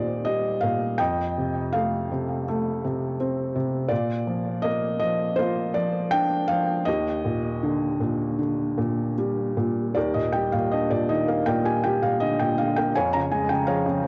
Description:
classical, lyrical solo piano; 80 BPM; 4/4; uneven beats, rubato; Eb major; A4 = 440 Hz
felt-muted upright piano; solo; 0.0-14.1 s; Eb2 to Bb5; -25 LUFS; equal; cassette tape, analog delay
light reverb; home recording on cassette; -25 LUFS; mono
0.0-10.0 A section; 10.0-14.1 B section
0.0 Eb; 1.0 F7; 3.9 Bb; 6.9 Ebmaj7; 13.0 Db/F

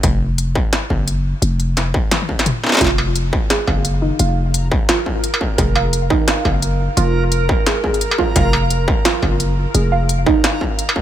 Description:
half-time drum and bass; 173 BPM; 4/4; swing 59% on 16ths, half-time; F phrygian; A4 = 440 Hz
growling 808-style bass; bass; 0.0-10.3 s; F1 to Gb1; -17 LUFS; equal; tube saturation
electronic kick drum; drums; 0.0-11.0 s; -19 LUFS; equal; distortion, small room ambience
industrial drum kit; drums; 0.0-10.9 s; hi-hat, snare drum, struck metal, toms; -20 LUFS; left 1 dB; small room ambience
warbly dusty pluck; arpeggios; 2.8-11.0 s; Eb4 to F5; -21 LUFS; right 4 dB; chorus, ping-pong delay
backwards swelling texture; texture; 4.6-11.0 s; Bb4; -25 LUFS; right 4 dB; built-in reverb
digital ambience; -14 LUFS; side -11 dB against mid
0.0-11.0 A section
drum fill 2.1-2.8; kick drops out 2.5-2.8
0.0 F5

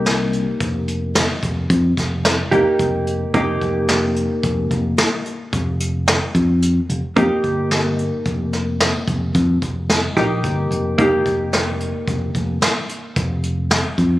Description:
progressive instrumental, band music in an uneven meter; 110 BPM; 7/4; straight; A4 = 440 Hz
hollow-body jazz guitar; accompaniment; 0.0-14.2 s; Bb3 to G4; -20 LUFS; equal; double-tracked left and right
fingered electric bass; bass; 0.0-14.2 s; F1 to F2; -20 LUFS; equal
jazz brush drum kit; drums; 0.1-14.1 s; hi-hat, kick drum, snare drum; -20 LUFS; equal
light reverb, studio ambience; recorded on a phone in the room, club ambience, compression; -16 LUFS; side -16 dB against mid
0.0-14.2 A section
0.0 Fsus2; 3.3 F9sus4

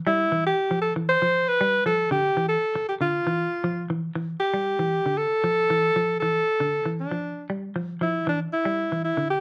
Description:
afrobeat; 117 BPM; 4/4; straight; A4 = 438 Hz
breathy alto saxophone; melody; 0.1-9.4 s; D4 to C5; -25 LUFS; equal
clean electric guitar; arpeggios; 0.1-9.4 s; D3 to G3; -31 LUFS; equal
moderate club reverb, RT60 0.6 s; -24 LUFS; mono
0.0-4.2 A section; 4.2-9.4 B section
0.1 Fsus2; 2.1 Dmadd9; 4.2 Dsus24; 5.2 Dm; 7.2 Dmadd9; 8.3 Dsus24

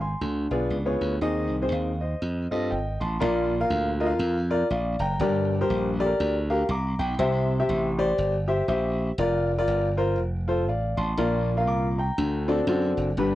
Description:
uptempo gospel; 120 BPM; 4/4; swing 59% on 8ths; Bb major from 3.2 s; A4 = 437 Hz
warm grand piano; accompaniment; 0.0-13.3 s; G2 to D6; -25 LUFS; left 1 dB
glassy slap bass; bass; 0.0-13.3 s; F1 to G2; -27 LUFS; right 1 dB
little or no reverb; dry, close 1970s-style studio recording; -23 LUFS; side -15 dB against mid
0.0-3.2 A section; 3.2-13.3 B section
0.2 Ddim7; 1.2 Ab; 2.2 F7; 3.2 Bb; 5.2 Gm; 7.2 C; 9.2 Bb/F; 10.2 F; 11.2 Bb; 12.2 D7

